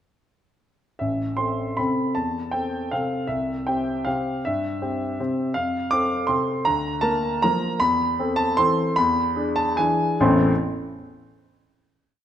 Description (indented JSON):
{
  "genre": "classical, piano waltz",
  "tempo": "135-170 BPM",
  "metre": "3/4",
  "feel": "rubato",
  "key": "A minor",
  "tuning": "A4 = 442 Hz",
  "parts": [
    { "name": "clear grand piano", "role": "solo", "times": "1.0-10.5 s", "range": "A1 to D6", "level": "-21 LUFS", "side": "equal", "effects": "none" }
  ],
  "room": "wet recital hall reverb, RT60 1.5 s",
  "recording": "none",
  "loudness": "-21 LUFS",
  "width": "side -10 dB against mid",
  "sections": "1.0-10.2 A section; 10.2-11.4 final chord",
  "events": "none",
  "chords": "1.0 Am; 3.3 C; 5.6 F; 6.7 Bb/D; 7.8 Am/E; 9.0 E7; 10.2 Am",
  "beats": "| 1.01 1.39 1.78 | 2.16 2.53 2.91 | 3.29 3.67 4.06 | 4.44 4.81 5.19 | 5.56 5.92 6.29 | 6.67 7.04 7.43 | 7.81 8.19 8.58 | 8.97 9.37 9.78 | 10.21"
}